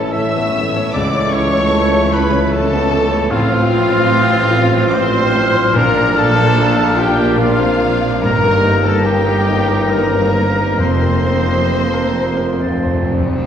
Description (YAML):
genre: classical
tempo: 65-77 BPM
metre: 3/4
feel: rubato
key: unclear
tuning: A4 = 442 Hz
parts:
  - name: rich chamber violin section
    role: melody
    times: 0.0-13.1 s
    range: F5 to E6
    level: -25 LUFS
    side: left 2 dB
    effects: none
  - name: warm concert grand piano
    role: melody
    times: 0.0-13.5 s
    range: C#2 to D5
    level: -18 LUFS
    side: left 2 dB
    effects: none
  - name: clear clarinet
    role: second line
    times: 0.0-13.1 s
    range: A3 to Eb4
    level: -27 LUFS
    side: left 2 dB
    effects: none
  - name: mellow hollow silver concert flute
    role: second line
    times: 0.0-13.1 s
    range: E6 to Bb6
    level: -25 LUFS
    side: left 3 dB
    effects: none
  - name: rich chamber violin section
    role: second line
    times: 0.0-13.1 s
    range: F4 to E5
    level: -23 LUFS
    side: left 3 dB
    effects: none
  - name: rich symphonic viola section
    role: accompaniment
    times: 0.0-13.2 s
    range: E3 to Eb4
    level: -26 LUFS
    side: right 2 dB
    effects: none
  - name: clear trombone section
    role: sustained chords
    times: 0.0-13.1 s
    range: C3 to C4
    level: -25 LUFS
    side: right 2 dB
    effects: none
  - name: mellow trumpet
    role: stabs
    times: 0.0-13.1 s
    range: F4 to E5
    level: -22 LUFS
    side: right 1 dB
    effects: none
  - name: clear chamber double bass section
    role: bass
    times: 0.0-13.2 s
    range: F1 to C#2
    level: -23 LUFS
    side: right 3 dB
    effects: none
  - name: warm chamber cello section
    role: bass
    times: 0.0-13.2 s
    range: F2 to C#3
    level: -23 LUFS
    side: right 2 dB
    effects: none
  - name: warm tuba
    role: bass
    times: 0.0-13.2 s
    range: F1 to C#2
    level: -24 LUFS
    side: right 2 dB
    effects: none
  - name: warm oboe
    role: second line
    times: 0.1-13.0 s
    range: F4 to E5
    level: -24 LUFS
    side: equal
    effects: none
  - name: dark French horn section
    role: sustained chords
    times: 0.1-13.1 s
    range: A3 to A4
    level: -26 LUFS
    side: left 2 dB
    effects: none
  - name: timpani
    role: percussion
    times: 5.8-6.9, 10.8-13.4 s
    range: F2 to Bb2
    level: -23 LUFS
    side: equal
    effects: none
room: wet scoring stage reverb, RT60 1.5 s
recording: heard from further back in the room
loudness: -12 LUFS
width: side -8 dB against mid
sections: 0.0-13.5 A section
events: timpani fill 12.6-13.5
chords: 0.0 A; 0.9 A/C#; 3.3 F/A; 5.8 Bb; 8.2 Eb/G; 10.8 Fsus4; 12.6 F